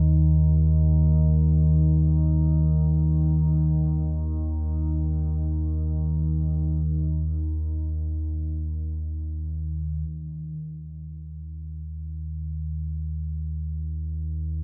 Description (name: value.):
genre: ambient.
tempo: free time.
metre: none.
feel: none.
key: unclear.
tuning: A4 = 440 Hz.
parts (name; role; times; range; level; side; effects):
deep rumbling drone; solo; 0.0-14.6 s; Eb2 to Eb3; -25 LUFS; equal; built-in reverb.
room: wet huge ambient reverb, RT60 8.0 s.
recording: in a vast, echoing space.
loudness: -25 LUFS.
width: mono.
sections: 0.0-10.1 A section; 10.1-14.6 B section.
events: none.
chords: none.